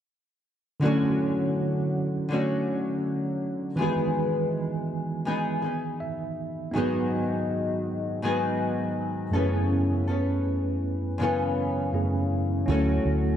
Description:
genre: indie pop, bedroom pop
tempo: 81 BPM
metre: 4/4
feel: straight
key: unclear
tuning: A4 = 441 Hz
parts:
  - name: nylon-string guitar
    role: accompaniment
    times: 0.8-13.4 s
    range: F#2 to A4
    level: -27 LUFS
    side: left 2 dB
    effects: lush chorus, vibrato effect
  - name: tine electric piano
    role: accompaniment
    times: 0.8-13.4 s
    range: F#2 to E5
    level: -28 LUFS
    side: right 3 dB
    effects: overdrive, fast stereo tremolo, cassette tape
  - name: vintage muted fingered electric bass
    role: bass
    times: 12.7-13.3 s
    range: D2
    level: -24 LUFS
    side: equal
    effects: none
room: moderate plate reverb, RT60 2.8 s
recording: dark, warm production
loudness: -24 LUFS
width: side -10 dB against mid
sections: 0.8-12.7 A section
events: tine electric piano fill 5.6-6.7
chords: 0.8 Dmaj7; 3.8 Emaj7; 6.7 G#m7; 9.3 F#m11; 12.7 Dmaj7

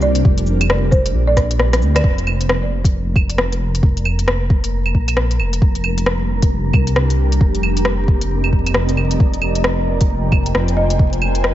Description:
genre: future garage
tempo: 134 BPM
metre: 4/4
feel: swing 61% on 16ths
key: unclear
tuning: A4 = 440 Hz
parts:
  - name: folk marimba with medium hard mallets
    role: melody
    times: 0.0-1.9, 10.8-11.0 s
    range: C5 to Eb5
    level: -23 LUFS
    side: right 2 dB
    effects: vintage 12-bit sampler grit, digital delay
  - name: ethereal airy pad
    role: sustained chords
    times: 0.0-2.0, 6.2-11.5 s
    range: G3 to Ab5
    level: -25 LUFS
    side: right 1 dB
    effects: ensemble chorus, built-in reverb, tremolo, sidechain pumping
  - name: dark detuned saw bass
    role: bass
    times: 0.0-11.5 s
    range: F1 to D2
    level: -18 LUFS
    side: equal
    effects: sidechain pumping
  - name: organic electronic drum kit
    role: drums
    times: 0.0-11.5 s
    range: cabasa, claves, hi-hat, rim click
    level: -21 LUFS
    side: equal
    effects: overdrive
  - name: electronic kick drum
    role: drums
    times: 0.2-11.1 s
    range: none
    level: -15 LUFS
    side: equal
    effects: overdrive
  - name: wind-like tuned noise texture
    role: texture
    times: 2.9-11.5 s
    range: Bb3 to Bb4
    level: -28 LUFS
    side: left 1 dB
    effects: built-in reverb
room: light reverb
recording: vinyl crackle, nothing above 7.8 kHz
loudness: -14 LUFS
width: side -13 dB against mid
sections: 0.0-2.0 A section; 2.0-11.5 B section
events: drum fill 1.4-2.0; band accent 1.9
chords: 0.2 Cm9/F; 1.1 Bb; 2.0 Bb5/F; 5.6 Gm7/F; 7.4 Cm9/F; 9.2 Fm7; 11.0 Bb7(no3)/F

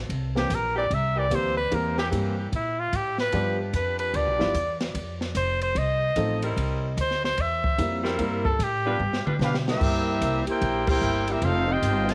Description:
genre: jazz, big band swing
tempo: 148 BPM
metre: 4/4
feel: swing 64% on 8ths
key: C mixolydian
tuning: A4 = 440 Hz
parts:
  - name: upright bass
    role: bass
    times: 0.0-12.1 s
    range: F1 to B2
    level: -31 LUFS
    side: equal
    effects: none
  - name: open jazz drum kit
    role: drums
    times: 0.1-12.1 s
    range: crash cymbal, hi-hat, kick drum, ride cymbal, snare drum, toms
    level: -34 LUFS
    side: equal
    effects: cassette tape
  - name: clear trumpet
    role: melody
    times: 0.4-9.3 s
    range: E4 to E5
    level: -30 LUFS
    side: equal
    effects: cassette tape, tape echo
  - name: warm upright piano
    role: accompaniment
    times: 0.4-9.0 s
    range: E3 to B4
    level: -32 LUFS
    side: equal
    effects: cassette tape
  - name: clear saxophone section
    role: sustained chords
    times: 0.8-11.4 s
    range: E3 to B4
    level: -36 LUFS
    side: equal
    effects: cassette tape
  - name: clear trumpet section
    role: melody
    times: 9.4-12.1 s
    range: C4 to A5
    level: -28 LUFS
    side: equal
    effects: cassette tape, tape echo
  - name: clear trombone section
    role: second line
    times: 9.4-12.1 s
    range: C3 to G4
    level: -31 LUFS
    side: equal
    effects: cassette tape
room: light reverb, studio reverb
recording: home recording on cassette, vinyl crackle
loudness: -25 LUFS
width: mono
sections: 0.0-9.8 A section; 9.8-12.1 B section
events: trumpet solo 0.0-9.8; drum fill 9.0-9.8; band accent 10.8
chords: 0.1 C7; 3.3 G7; 5.0 F7; 6.6 C7; 9.0 G7; 9.8 C7; 11.4 F7

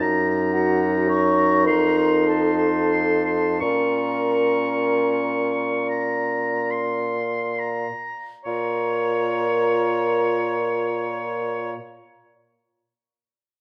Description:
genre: classical, slow romantic movement for wind quintet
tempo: 22-38 BPM (dotted quarters)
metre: 6/8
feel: rubato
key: Bb minor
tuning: A4 = 441 Hz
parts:
  - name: clear oboe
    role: second line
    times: 0.0-11.7 s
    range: Db5 to Db6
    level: -29 LUFS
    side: equal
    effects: none
  - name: mellow clarinet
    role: accompaniment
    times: 0.0-11.7 s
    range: Db4 to F4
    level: -29 LUFS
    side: equal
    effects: none
  - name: mellow bassoon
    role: bass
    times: 0.0-11.8 s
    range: F2 to Bb2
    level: -26 LUFS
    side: equal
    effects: none
  - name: silver concert flute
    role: melody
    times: 0.5-11.8 s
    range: Gb5 to Db6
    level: -31 LUFS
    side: equal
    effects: none
  - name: warm French horn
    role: accompaniment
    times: 0.5-11.8 s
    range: Gb4 to Db5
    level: -27 LUFS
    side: equal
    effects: none
room: moderate recital hall reverb, RT60 1.5 s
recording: none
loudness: -22 LUFS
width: mono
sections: 0.0-8.5 A section; 8.5-13.3 B section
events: slowing down 0.0-8.5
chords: 0.0 Gb; 1.7 F; 3.6 Bbm

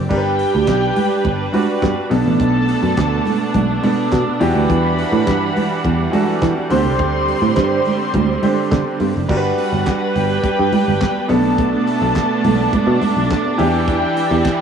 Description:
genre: disco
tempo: 104 BPM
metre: 4/4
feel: straight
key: G major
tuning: A4 = 440 Hz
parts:
  - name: bright grand piano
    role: accompaniment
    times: 0.0-14.6 s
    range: B2 to D5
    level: -21 LUFS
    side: equal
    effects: none
  - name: clear symphonic string section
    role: sustained chords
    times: 0.0-14.6 s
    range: D3 to F#5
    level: -21 LUFS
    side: right 4 dB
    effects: none
  - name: picked electric bass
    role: bass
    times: 0.0-14.4 s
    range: F#1 to E3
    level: -18 LUFS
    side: right 2 dB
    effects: none
  - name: dark studio string section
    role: second line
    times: 0.1-14.6 s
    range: F#4 to C6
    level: -22 LUFS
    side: left 1 dB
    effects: none
  - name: damped 70s drum kit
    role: drums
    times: 0.1-14.6 s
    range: crash cymbal, handclaps, hi-hat, kick drum, snare drum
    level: -26 LUFS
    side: equal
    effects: cassette tape
  - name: congas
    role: percussion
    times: 0.1-14.6 s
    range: none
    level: -24 LUFS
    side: equal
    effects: none
room: little or no reverb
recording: home recording on cassette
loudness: -14 LUFS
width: side -7 dB against mid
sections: 0.1-9.3 A section; 9.3-14.6 B section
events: none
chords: 0.1 Gmaj7; 2.1 Bm7; 4.4 Em9; 6.7 D7sus4; 9.3 Gmaj7; 11.3 Bm7; 13.6 Em7

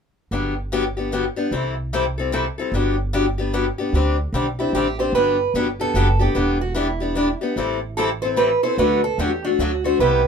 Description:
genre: acoustic string swing (jazz manouche)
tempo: 149 BPM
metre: 3/4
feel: swing 62% on 8ths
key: G major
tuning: A4 = 437 Hz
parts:
  - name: picked steel-string acoustic guitar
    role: accompaniment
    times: 0.3-10.2 s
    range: C3 to A4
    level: -21 LUFS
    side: left 4 dB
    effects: none
  - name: upright bass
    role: bass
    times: 0.3-10.3 s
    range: E1 to E2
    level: -25 LUFS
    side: right 1 dB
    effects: none
  - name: picked acoustic archtop guitar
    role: melody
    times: 4.6-10.3 s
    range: D4 to C5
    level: -21 LUFS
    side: right 5 dB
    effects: none
room: light reverb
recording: minimal, uncompressed stereo recording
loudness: -18 LUFS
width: side -6 dB against mid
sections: 0.3-5.1 A section; 5.1-10.3 B section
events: none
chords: 0.3 Gmaj7; 1.5 C6; 2.7 Gmaj7; 3.9 D7sus4; 5.1 Gmaj7; 6.4 Em7; 7.6 Am7; 8.8 D

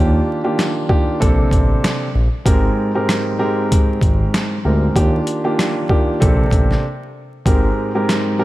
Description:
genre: hip hop, boom-bap hip-hop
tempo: 96 BPM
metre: 4/4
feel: swing 57% on 16ths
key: Ab lydian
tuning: A4 = 439 Hz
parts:
  - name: dark grand piano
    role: accompaniment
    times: 0.0-8.4 s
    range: Ab2 to Bb4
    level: -18 LUFS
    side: equal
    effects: cassette tape, high-pass filter, low-pass filter
  - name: smooth synth bass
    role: bass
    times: 0.0-7.7 s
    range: Ab1 to Eb2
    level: -17 LUFS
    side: equal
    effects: none
  - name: boom bap sampler-style drum kit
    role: drums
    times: 0.6-8.3 s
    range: hi-hat, kick drum, rim click, snare drum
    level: -17 LUFS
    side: equal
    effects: none
room: moderate plate reverb, RT60 2.1 s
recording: dreamy mix soaked in reverb, vinyl crackle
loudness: -14 LUFS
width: side -16 dB against mid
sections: 0.0-8.4 A section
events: break 6.8-7.5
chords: 0.0 Ebmaj9; 1.2 Bbmaj9; 2.5 Abmaj9; 5.0 Ebmaj9; 6.2 Bbmaj9; 7.5 Abmaj9

